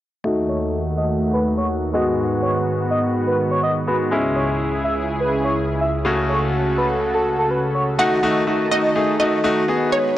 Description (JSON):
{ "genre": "pop", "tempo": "124 BPM", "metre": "4/4", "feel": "straight", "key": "unclear", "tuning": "A4 = 439 Hz", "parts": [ { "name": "bright grand piano", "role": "accompaniment", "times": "0.2-10.1 s", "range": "C#3 to G#4", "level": "-22 LUFS", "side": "left 1 dB", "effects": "low-pass filter" }, { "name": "lush unison pad", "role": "sustained chords", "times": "0.2-10.2 s", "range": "C#2 to B4", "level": "-22 LUFS", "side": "equal", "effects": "chorus, low-pass filter" }, { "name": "expressive synth lead", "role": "melody", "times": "0.5-7.8 s", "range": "A4 to E5", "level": "-24 LUFS", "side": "equal", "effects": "chorus, low-pass filter" }, { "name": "wide unison pluck", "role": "melody", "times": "8.0-10.1 s", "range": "C#5 to F#5", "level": "-21 LUFS", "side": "right 1 dB", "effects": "none" } ], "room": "light reverb, digital ambience", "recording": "dry, gritty hardware recording, transformer saturation, cassette tape", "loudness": "-17 LUFS", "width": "side -13 dB against mid", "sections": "0.2-8.0 A section; 8.0-10.2 B section", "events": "filter sweep 0.2-8.0", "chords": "0.2 D#dim; 1.9 G#m7; 4.1 C#m; 6.1 F#m/C#; 8.0 D#dim" }